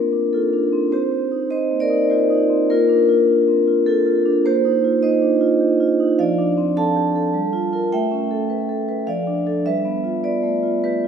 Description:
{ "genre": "classical, contemporary piece for solo vibraphone", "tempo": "102 BPM", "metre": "3/4", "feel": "rubato", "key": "F major from 6.2 s", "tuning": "A4 = 440 Hz", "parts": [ { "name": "vibraphone with medium hard mallets", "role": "solo", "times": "0.0-11.1 s", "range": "F3 to A5", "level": "-16 LUFS", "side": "equal", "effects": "none" } ], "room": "wet church reverb, RT60 2.9 s", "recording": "recorded in a church or concert hall", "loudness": "-16 LUFS", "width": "side -7 dB against mid", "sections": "0.0-11.1 A section", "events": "none", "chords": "0.0 Bbmaj9; 0.9 Cm7; 2.7 Bbmaj7; 4.5 Eb69/Bb; 6.2 F6; 7.4 Gm9; 7.9 A9; 9.1 F6; 9.7 G13" }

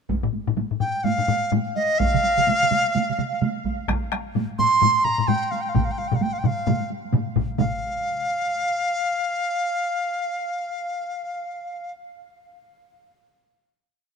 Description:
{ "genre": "japanese traditional, taiko drum ensemble", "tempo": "130 BPM", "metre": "4/4", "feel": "swing 60% on 16ths", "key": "F suspended pentatonic", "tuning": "A4 = 440 Hz", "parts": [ { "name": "taiko ensemble", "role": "percussion", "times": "0.1-7.8 s", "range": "none", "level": "-29 LUFS", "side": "right 4 dB", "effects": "none" }, { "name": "taiko ensemble", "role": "percussion", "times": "0.1-7.8 s", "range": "none", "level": "-29 LUFS", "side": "right 1 dB", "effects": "none" }, { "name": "taiko ensemble", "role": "percussion", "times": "0.2-8.0 s", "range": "none", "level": "-26 LUFS", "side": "left 8 dB", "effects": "none" }, { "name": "dizi", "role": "melody", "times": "0.8-11.9 s", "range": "Eb5 to C6", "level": "-22 LUFS", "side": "right 1 dB", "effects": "none" }, { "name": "taiko ensemble", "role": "percussion", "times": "2.1-8.0 s", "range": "none", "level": "-26 LUFS", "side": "right 6 dB", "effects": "none" } ], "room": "moderate huge ambient reverb, RT60 4.1 s", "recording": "minimal, uncompressed stereo recording", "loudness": "-21 LUFS", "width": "side -5 dB against mid", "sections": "0.1-7.6 A section; 7.6-11.2 final note", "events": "speeding up 0.1-11.2", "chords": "none" }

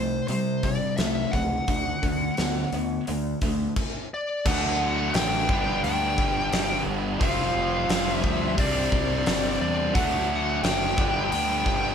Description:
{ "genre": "classic rock", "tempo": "87 BPM", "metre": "4/4", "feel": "straight", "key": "unclear", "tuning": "A4 = 440 Hz", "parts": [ { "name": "smooth overdriven lead guitar", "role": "melody", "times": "0.0-11.9 s", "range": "C5 to G5", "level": "-28 LUFS", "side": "left 1 dB", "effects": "none" }, { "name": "sludgy distorted guitar", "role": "riff", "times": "0.0-11.9 s", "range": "G2 to F4", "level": "-26 LUFS", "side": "equal", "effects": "overdrive" }, { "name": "growling fingered electric bass", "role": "bass", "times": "0.0-11.9 s", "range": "F1 to C3", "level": "-31 LUFS", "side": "equal", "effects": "overdrive" }, { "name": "gated 80s drum kit", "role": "drums", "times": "0.3-11.8 s", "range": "crash cymbal, hi-hat, kick drum, snare drum", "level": "-28 LUFS", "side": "equal", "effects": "none" } ], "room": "moderate large studio reverb, RT60 0.9 s", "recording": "band playing live in one room", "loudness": "-22 LUFS", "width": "side -7 dB against mid", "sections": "0.0-4.4 A section; 4.4-11.9 B section", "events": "stop 3.8-4.4", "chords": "0.0 C5; 1.7 D; 5.5 G; 7.2 Fsus2; 8.6 Csus2; 9.9 D; 11.0 G" }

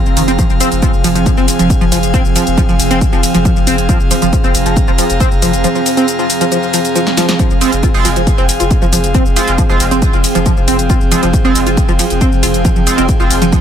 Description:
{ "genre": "driving peak-time techno", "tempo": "137 BPM", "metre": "4/4", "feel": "straight", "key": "F minor", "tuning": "A4 = 439 Hz", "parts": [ { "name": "deep dark ambient pad", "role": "drone", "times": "0.0-13.6 s", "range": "F3 to C4", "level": "-19 LUFS", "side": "right 1 dB", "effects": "chorus, built-in reverb, sidechain pumping" }, { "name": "airy breathy pad", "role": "texture", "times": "0.0-13.6 s", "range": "C4 to Bb5", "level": "-19 LUFS", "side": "left 1 dB", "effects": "chorus, sidechain pumping" }, { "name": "saturated sub bass", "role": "bass", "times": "0.1-13.5 s", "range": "F1", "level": "-19 LUFS", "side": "equal", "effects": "overdrive, sidechain pumping, low-pass filter" }, { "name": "techno drum kit", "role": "drums", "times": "0.1-13.6 s", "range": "hi-hat, shaker, snare drum", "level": "-18 LUFS", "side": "left 1 dB", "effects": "none" }, { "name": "tight sequenced synth", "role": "riff", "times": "0.2-13.6 s", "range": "Eb3 to F4", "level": "-16 LUFS", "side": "right 1 dB", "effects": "chorus, phaser, overdrive, sidechain pumping, ping-pong delay" }, { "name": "electronic kick drum", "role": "drums", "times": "0.4-13.6 s", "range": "none", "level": "-13 LUFS", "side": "equal", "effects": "none" }, { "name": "sync-sweep polysynth", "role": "stabs", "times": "7.6-13.3 s", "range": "Ab3 to F4", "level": "-20 LUFS", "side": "right 5 dB", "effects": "chorus, sidechain pumping, digital delay" } ], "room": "light reverb, digital ambience", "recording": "none", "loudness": "-9 LUFS", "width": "side -9 dB against mid", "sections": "0.0-13.6 A section", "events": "drum fill 7.1-7.4", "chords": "0.0 Fm" }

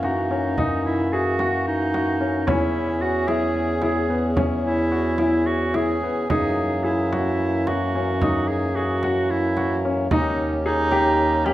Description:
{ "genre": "contemporary instrumental, chamber music in an uneven meter", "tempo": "221 BPM (eighths)", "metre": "7/8", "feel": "straight", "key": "unclear", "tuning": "A4 = 441 Hz", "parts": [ { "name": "clear clarinet", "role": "second line", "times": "0.0-11.5 s", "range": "C#4 to G#4", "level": "-24 LUFS", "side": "right 2 dB", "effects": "none" }, { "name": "pedal harmonium", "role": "sustained chords", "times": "0.0-11.5 s", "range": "D#3 to G#4", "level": "-26 LUFS", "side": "equal", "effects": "none" }, { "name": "warm grand piano", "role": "arpeggios", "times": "0.0-11.5 s", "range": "B3 to G#4", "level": "-25 LUFS", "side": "left 2 dB", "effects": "none" }, { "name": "warm bass clarinet", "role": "bass", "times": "0.0-11.5 s", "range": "D#2 to F#2", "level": "-27 LUFS", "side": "left 1 dB", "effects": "none" }, { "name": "frame drum", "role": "percussion", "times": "0.0-11.5 s", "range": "none", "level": "-28 LUFS", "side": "right 2 dB", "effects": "none" } ], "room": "moderate recital hall reverb, RT60 1.5 s", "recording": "none", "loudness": "-19 LUFS", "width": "side -14 dB against mid", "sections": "0.0-11.5 A section", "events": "none", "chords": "0.0 F#13; 2.5 E6; 6.3 F#13; 10.1 D#7" }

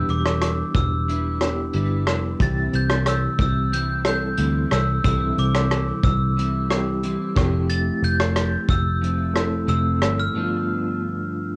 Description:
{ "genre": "indie pop, bedroom pop", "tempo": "91 BPM", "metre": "4/4", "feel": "straight", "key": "C major", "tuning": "A4 = 437 Hz", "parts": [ { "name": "glockenspiel with brass mallets", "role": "melody", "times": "0.0-11.6 s", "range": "D6 to A6", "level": "-30 LUFS", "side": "equal", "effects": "analog chorus, cassette tape" }, { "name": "clean electric guitar", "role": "accompaniment", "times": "0.0-11.6 s", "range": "G2 to B4", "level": "-30 LUFS", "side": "equal", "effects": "analog chorus, warbly pitch drift, cassette tape" }, { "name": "reed electric piano", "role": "accompaniment", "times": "0.0-11.6 s", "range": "G2 to A4", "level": "-32 LUFS", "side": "equal", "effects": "fast tremolo, cassette tape" }, { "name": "vintage muted picked electric bass", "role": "bass", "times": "0.0-10.3 s", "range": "E1 to D2", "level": "-26 LUFS", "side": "equal", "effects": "none" }, { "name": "unplugged drum kit", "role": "drums", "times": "0.1-10.2 s", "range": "hi-hat, kick drum, rim click", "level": "-26 LUFS", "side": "equal", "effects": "cassette tape" } ], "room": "light reverb", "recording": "home recording on cassette", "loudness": "-22 LUFS", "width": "mono", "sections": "0.0-11.6 A section", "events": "break 10.3-11.6", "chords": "0.0 Em7; 2.4 C; 7.4 Fmaj7; 10.3 G7" }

